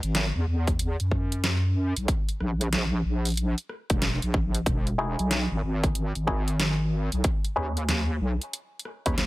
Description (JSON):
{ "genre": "glitch hop", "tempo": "93 BPM", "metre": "4/4", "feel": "swing 64% on 16ths", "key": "unclear", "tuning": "A4 = 438 Hz", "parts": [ { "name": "wobble bass", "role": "bass", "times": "0.0-9.3 s", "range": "E1 to F#2", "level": "-26 LUFS", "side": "equal", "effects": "chorus, overdrive" }, { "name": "dubstep drum kit", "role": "drums", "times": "0.0-9.3 s", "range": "hi-hat, rim click, snare drum", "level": "-29 LUFS", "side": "right 1 dB", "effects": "overdrive" }, { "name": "electronic kick drum", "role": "drums", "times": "0.7-9.2 s", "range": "none", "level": "-26 LUFS", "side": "equal", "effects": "overdrive" }, { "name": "muted clav", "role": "stabs", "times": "5.0-9.2 s", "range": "C#4 to B4", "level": "-33 LUFS", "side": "left 1 dB", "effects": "auto-wah, sidechain pumping, low-pass filter, dub echo" } ], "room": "digital ambience", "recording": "none", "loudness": "-24 LUFS", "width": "side -18 dB against mid", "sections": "0.0-9.3 A section", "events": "none", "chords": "0.0 C#m (rootless); 2.1 N.C.; 4.7 Emaj9; 7.2 B69", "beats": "0.15 0.79 1.44 | 2.08 2.73 3.37 4.02 | 4.66 5.31 5.95 6.60 | 7.24 7.89 8.53 9.18" }